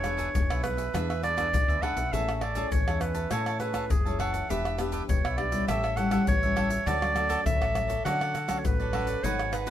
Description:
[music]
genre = samba and choro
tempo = 101 BPM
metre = 4/4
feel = straight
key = unclear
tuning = A4 = 442 Hz
[part]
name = clear clarinet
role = melody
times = 0.0-9.7 s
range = G#4 to F#5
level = -30 LUFS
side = right 2 dB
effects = none
[part]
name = cavaquinho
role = accompaniment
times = 0.0-9.7 s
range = D4 to A5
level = -36 LUFS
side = right 3 dB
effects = none
[part]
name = nylon-string guitar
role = accompaniment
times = 0.0-9.7 s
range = G#2 to G#4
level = -33 LUFS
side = left 3 dB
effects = none
[part]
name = woody fretless electric bass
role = bass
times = 0.0-9.7 s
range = E1 to D3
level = -32 LUFS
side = equal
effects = none
[part]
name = egg shaker, pandeiro, tamborim and surdo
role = percussion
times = 0.0-9.7 s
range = none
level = -31 LUFS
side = left 2 dB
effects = none
[sound]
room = light reverb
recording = minimal, uncompressed stereo recording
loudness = -25 LUFS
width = side -11 dB against mid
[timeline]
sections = 0.0-9.7 A section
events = none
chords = 0.0 E7; 2.1 Amaj7; 4.5 Em7; 5.7 A7; 6.9 Dmaj7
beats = 0.36 0.95 1.54 | 2.13 2.72 3.31 3.91 | 4.50 5.09 5.68 6.28 | 6.87 7.46 8.05 8.64 | 9.24

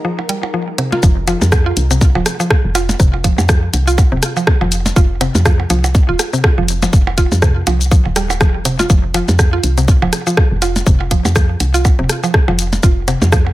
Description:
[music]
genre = minimal techno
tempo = 122 BPM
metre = 4/4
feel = swing 57% on 16ths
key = F minor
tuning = A4 = 440 Hz
[part]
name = mallet-like synth pluck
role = riff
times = 0.0-13.4 s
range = C3 to F4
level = -19 LUFS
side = right 1 dB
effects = chorus, sidechain pumping, digital delay
[part]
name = woody FM bass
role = bass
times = 0.0-13.5 s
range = Eb1 to F2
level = -16 LUFS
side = equal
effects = sidechain pumping, high-pass filter
[part]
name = granular cloud pad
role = texture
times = 0.0-1.0 s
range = Eb4 to Bb4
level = -30 LUFS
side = left 1 dB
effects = built-in reverb, sidechain pumping
[part]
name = percussion blips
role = percussion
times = 0.2-13.5 s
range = none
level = -22 LUFS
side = right 3 dB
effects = studio reverb, tape echo
[part]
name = garage drum kit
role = drums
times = 0.3-13.4 s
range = hi-hat, rim click, shaker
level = -19 LUFS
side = left 1 dB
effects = studio reverb
[part]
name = electronic kick drum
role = drums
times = 1.0-13.4 s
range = none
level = -12 LUFS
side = equal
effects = studio reverb
[sound]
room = little or no reverb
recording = none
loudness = -11 LUFS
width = side -16 dB against mid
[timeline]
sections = 0.0-1.0 A section; 1.0-13.5 B section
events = drop 1.0-13.5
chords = 0.0 Fm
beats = 0.05 0.54 | 1.03 1.52 2.01 2.50 | 3.00 3.49 3.98 4.47 | 4.96 5.46 5.95 6.44 | 6.93 7.42 7.91 8.41 | 8.90 9.39 9.88 10.37 | 10.87 11.36 11.85 12.34 | 12.83 13.32

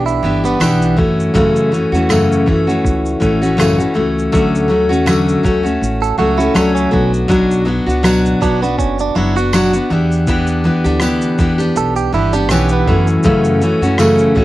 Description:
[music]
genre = acoustic pop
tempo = 81 BPM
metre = 4/4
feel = swing 55% on 16ths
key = unclear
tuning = A4 = 440 Hz
[part]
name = direct-recorded clean electric guitar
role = second line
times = 0.0-1.0, 6.0-13.1 s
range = B3 to A4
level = -19 LUFS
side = right 7 dB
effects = cassette tape
[part]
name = picked steel-string acoustic guitar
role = accompaniment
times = 0.0-14.4 s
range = F#2 to G4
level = -13 LUFS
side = left 1 dB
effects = cassette tape
[part]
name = upright bass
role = bass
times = 0.0-14.4 s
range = F#1 to A2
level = -20 LUFS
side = right 1 dB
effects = none
[part]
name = dusty soul sampler-style drum kit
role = drums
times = 0.1-14.4 s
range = kick drum, rim click, shaker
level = -22 LUFS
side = equal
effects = cassette tape
[part]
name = tambourine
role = percussion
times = 0.6-14.2 s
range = none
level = -28 LUFS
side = right 12 dB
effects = none
[sound]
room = little or no reverb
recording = home recording on cassette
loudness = -12 LUFS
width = side -16 dB against mid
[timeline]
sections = 0.0-14.4 A section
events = none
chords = 0.0 Em7; 1.0 F#m7; 4.3 Dmaj7; 6.9 Bm; 9.9 Em7; 12.9 F#m7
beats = 0.61 | 1.36 2.10 2.85 3.59 | 4.33 5.08 5.82 6.57 | 7.31 8.05 8.80 9.54 | 10.28 11.02 11.77 12.51 | 13.25 13.99

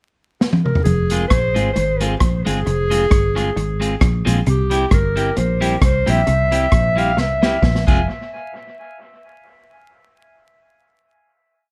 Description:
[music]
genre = ska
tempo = 133 BPM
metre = 4/4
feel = swing 55% on 8ths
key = F harmonic minor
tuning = A4 = 440 Hz
[part]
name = vintage drum kit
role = drums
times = 0.4-8.0 s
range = crash cymbal, hi-hat, kick drum, rim click, snare drum, toms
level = -21 LUFS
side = equal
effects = none
[part]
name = mellow clarinet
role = melody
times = 0.6-8.1 s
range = G4 to Ab5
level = -24 LUFS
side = equal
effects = dub echo
[part]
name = clean electric guitar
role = riff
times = 0.9-7.8 s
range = F2 to C3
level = -28 LUFS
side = equal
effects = none
[part]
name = fingered electric bass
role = bass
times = 0.9-8.1 s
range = F1 to C2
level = -23 LUFS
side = equal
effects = none
[part]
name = clean electric guitar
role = accompaniment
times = 1.1-8.0 s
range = G3 to Ab4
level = -24 LUFS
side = equal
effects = none
[sound]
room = light reverb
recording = vinyl crackle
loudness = -17 LUFS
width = mono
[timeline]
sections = 0.0-0.9 pickup bar; 0.9-8.1 head; 8.1-9.9 final hit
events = drum fill 0.4-0.9, 7.2-8.1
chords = 0.0 N.C.; 0.9 Fm; 4.5 C; 7.9 Fm; 8.1 N.C.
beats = 0.41 | 0.86 1.31 1.76 2.21 | 2.66 3.11 3.56 4.01 | 4.46 4.92 5.37 5.82 | 6.27 6.72 7.18 7.63

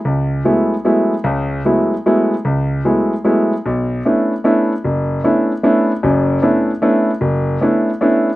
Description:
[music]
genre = jazz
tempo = 151 BPM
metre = 3/4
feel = swing 66% on 8ths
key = B minor from 3.6 s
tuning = A4 = 440 Hz
[part]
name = warm concert grand piano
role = solo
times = 0.1-8.3 s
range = F#1 to E4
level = -13 LUFS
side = equal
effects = none
[sound]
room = little or no reverb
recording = recorded outdoors, with no room sound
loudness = -13 LUFS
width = side -17 dB against mid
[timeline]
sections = 0.0-3.6 A section; 3.6-8.4 B section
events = none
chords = 0.0 F#m11; 3.6 Bm11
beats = | 0.06 0.46 0.86 | 1.26 1.66 2.05 | 2.45 2.85 3.25 | 3.64 4.04 4.44 | 4.83 5.23 5.63 | 6.03 6.42 6.82 | 7.22 7.62 8.01

